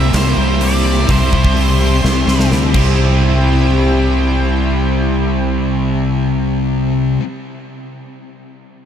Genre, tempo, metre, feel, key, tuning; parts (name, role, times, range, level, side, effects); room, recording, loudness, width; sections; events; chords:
rock, shoegaze and dream pop; 126 BPM; 4/4; straight; C mixolydian; A4 = 443 Hz
octave-fuzz lead guitar; melody; 0.0-2.5 s; C5 to E5; -24 LUFS; right 1 dB; distortion, analog delay
chorused pulse-width pad; sustained chords; 0.0-7.2 s; E4 to C6; -23 LUFS; left 1 dB
twelve-string electric guitar; arpeggios; 0.0-7.2 s; G3 to G4; -28 LUFS; left 7 dB
overdriven electric guitar; riff; 0.0-7.2 s; C3 to E4; -23 LUFS; right 9 dB; reverse reverb
overdriven electric guitar; riff; 0.0-7.2 s; C3 to E4; -21 LUFS; equal
thick fuzz guitar; riff; 0.0-7.2 s; C3 to C4; -21 LUFS; left 8 dB; distortion, wide subtle chorus
fingered electric bass; bass; 0.0-7.2 s; C2 to D2; -16 LUFS; equal
huge arena drum kit; drums; 0.1-2.9 s; crash cymbal, hi-hat, kick drum, snare drum; -20 LUFS; equal
moderate huge ambient reverb, RT60 7.2 s; dreamy mix soaked in reverb; -12 LUFS; side -9 dB against mid
0.0-3.0 A section; 3.0-6.8 B section
drum fill 2.0-3.0
0.0 C7; 1.1 C